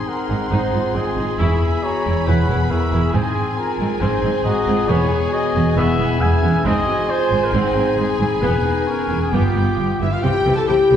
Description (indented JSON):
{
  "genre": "cinematic",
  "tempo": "136 BPM",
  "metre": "4/4",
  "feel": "straight",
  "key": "unclear",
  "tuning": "A4 = 440 Hz",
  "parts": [
    { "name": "warm symphonic violin section", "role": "melody", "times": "0.0-11.0 s", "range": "Fb5 to C6", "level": "-32 LUFS", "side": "left 4 dB", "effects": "none" },
    { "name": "clear clarinet", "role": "second line", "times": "0.0-11.0 s", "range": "B3 to G#4", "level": "-28 LUFS", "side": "left 2 dB", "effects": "none" },
    { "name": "mellow cor anglais", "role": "second line", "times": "0.0-11.0 s", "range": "Fb4 to Ab5", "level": "-29 LUFS", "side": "right 2 dB", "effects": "none" },
    { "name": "silver concert flute", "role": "second line", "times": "0.0-11.0 s", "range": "Fb5 to D6", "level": "-31 LUFS", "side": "left 2 dB", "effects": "none" },
    { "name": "warm symphonic violin section", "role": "second line", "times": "0.0-11.0 s", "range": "F4 to A5", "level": "-31 LUFS", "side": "left 3 dB", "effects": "none" },
    { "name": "mellow French horn section", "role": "sustained chords", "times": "0.0-11.0 s", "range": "B3 to A4", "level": "-22 LUFS", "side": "left 4 dB", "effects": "none" },
    { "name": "warm trumpet", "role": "stabs", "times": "0.0-11.0 s", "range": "Fb4 to G#5", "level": "-24 LUFS", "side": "right 2 dB", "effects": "none" },
    { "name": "clear symphonic viola section", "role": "accompaniment", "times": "0.3-11.0 s", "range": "E3 to E4", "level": "-29 LUFS", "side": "equal", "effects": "none" },
    { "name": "rich studio cello section", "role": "bass", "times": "0.3-11.0 s", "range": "E2 to C3", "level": "-23 LUFS", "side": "right 2 dB", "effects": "none" },
    { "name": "rich symphonic double bass section", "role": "bass", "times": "0.3-11.0 s", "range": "E1 to C2", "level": "-22 LUFS", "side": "right 1 dB", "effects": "none" }
  ],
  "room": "wet scoring stage reverb, RT60 1.4 s",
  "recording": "heard from further back in the room, nothing above 10.6 kHz",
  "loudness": "-16 LUFS",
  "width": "side -9 dB against mid",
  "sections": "0.0-10.2 A section",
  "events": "none",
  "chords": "0.0 Ab; 1.4 E; 3.1 Ab; 4.9 E; 6.7 Ab; 8.4 E; 9.3 G7; 10.2 C",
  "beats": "0.07 0.51 0.95 | 1.39 1.83 2.27 2.70 | 3.14 3.58 4.02 4.45 | 4.89 5.33 5.77 6.21 | 6.66 7.10 7.54 7.99 | 8.43 8.88 9.33 9.79 | 10.24 10.68"
}